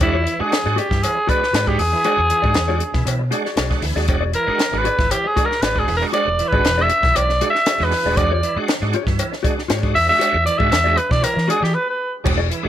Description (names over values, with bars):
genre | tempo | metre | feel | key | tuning
funk | 118 BPM | 4/4 | straight | E mixolydian | A4 = 445 Hz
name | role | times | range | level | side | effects
growling alto saxophone | melody | 0.0-12.1 s | E4 to E5 | -18 LUFS | equal | none
mellow electric guitar | accompaniment | 0.0-12.7 s | F#4 to D5 | -28 LUFS | left 6 dB | none
bright tonewheel organ | stabs | 0.0-12.7 s | E3 to F#4 | -26 LUFS | right 5 dB | chorus vibrato, slow rotary speaker
overdriven fingered electric bass | bass | 0.0-12.7 s | D#1 to E3 | -22 LUFS | equal | none
compact cocktail drum kit | drums | 0.0-12.6 s | crash cymbal, hi-hat, kick drum, snare drum | -22 LUFS | equal | none
cowbell | percussion | 0.0-12.4 s | none | -31 LUFS | equal | none
room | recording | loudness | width
small room reverb | none | -16 LUFS | side -11 dB against mid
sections
0.0-12.3 A section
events
alto saxophone solo 0.0-12.3; break 11.7-12.3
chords
0.0 E9